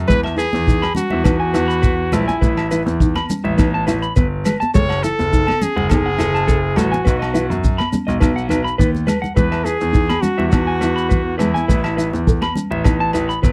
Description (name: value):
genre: highlife guitar band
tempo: 104 BPM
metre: 4/4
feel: straight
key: E major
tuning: A4 = 440 Hz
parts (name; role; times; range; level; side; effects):
- clear grand piano; bass; 0.0-13.5 s; F#1 to F#2; -24 LUFS; equal; none
- clear trumpet; melody; 0.1-12.2 s; E4 to C#5; -23 LUFS; equal; none
- fingerpicked steel-string acoustic guitar; accompaniment; 0.1-13.5 s; G#3 to A4; -25 LUFS; equal; none
- semi-hollow electric guitar; arpeggios; 0.1-13.5 s; A4 to B5; -26 LUFS; equal; slapback echo
- warm soul drum kit; drums; 0.1-13.5 s; hi-hat, kick drum, rim click; -21 LUFS; equal; none
- shekere; percussion; 0.1-13.5 s; none; -26 LUFS; equal; none
- agogo bells; percussion; 0.2-13.3 s; none; -34 LUFS; equal; none
- congas; percussion; 0.5-13.0 s; none; -27 LUFS; equal; none
room: light reverb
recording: dry, close 1970s-style studio recording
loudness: -17 LUFS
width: mono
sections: 0.1-13.5 A section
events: drum fill 8.9-9.4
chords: 0.1 E; 2.4 Asus2; 4.7 F#madd9; 7.1 B; 9.4 E; 11.7 Asus2